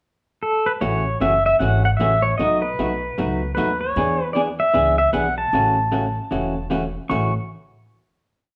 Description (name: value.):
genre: country, western swing.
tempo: 153 BPM.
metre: 4/4.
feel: swing 64% on 8ths.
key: A major.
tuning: A4 = 439 Hz.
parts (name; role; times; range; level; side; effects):
pedal steel guitar; melody; 0.4-7.3 s; A4 to C#6; -22 LUFS; equal; none.
vintage hollow-body jazz guitar; accompaniment; 0.8-7.3 s; A2 to G#4; -26 LUFS; equal; none.
upright bass; bass; 0.8-7.3 s; E1 to E2; -27 LUFS; equal; none.
room: wet large studio reverb, RT60 1.0 s.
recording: band playing live in one room.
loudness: -20 LUFS.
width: mono.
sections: 0.0-0.8 pickup bar; 0.8-7.1 A section; 7.1-8.6 final chord.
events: none.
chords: 0.0 N.C.; 0.8 A6; 2.4 B7; 4.0 E7; 5.5 A6.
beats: 0.03 0.42 | 0.82 1.21 1.60 2.00 | 2.39 2.79 3.18 3.57 | 3.97 4.36 4.75 5.14 | 5.54 5.93 6.32 6.71 | 7.11.